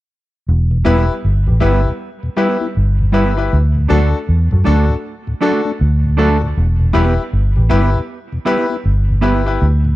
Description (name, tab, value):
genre	reggae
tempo	79 BPM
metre	4/4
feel	swing 64% on 16ths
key	E minor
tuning	A4 = 440 Hz
part	vintage muted fingered electric bass	bass	0.5-10.0 s	E1 to F#2	-13 LUFS	equal	none
part	mellow tonewheel organ	accompaniment	0.7-9.9 s	D2 to E4	-22 LUFS	left 2 dB	slow rotary speaker
part	mellow electric guitar	accompaniment	0.8-9.5 s	G3 to B4	-21 LUFS	right 5 dB	tube saturation, tape echo
part	bright grand piano	stabs	0.8-9.6 s	D4 to B4	-20 LUFS	left 5 dB	none
room	little or no reverb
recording	dry, close 1970s-style studio recording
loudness	-13 LUFS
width	side -16 dB against mid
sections	0.5-10.0 A section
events	none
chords	0.5 Em; 3.5 D; 6.6 Em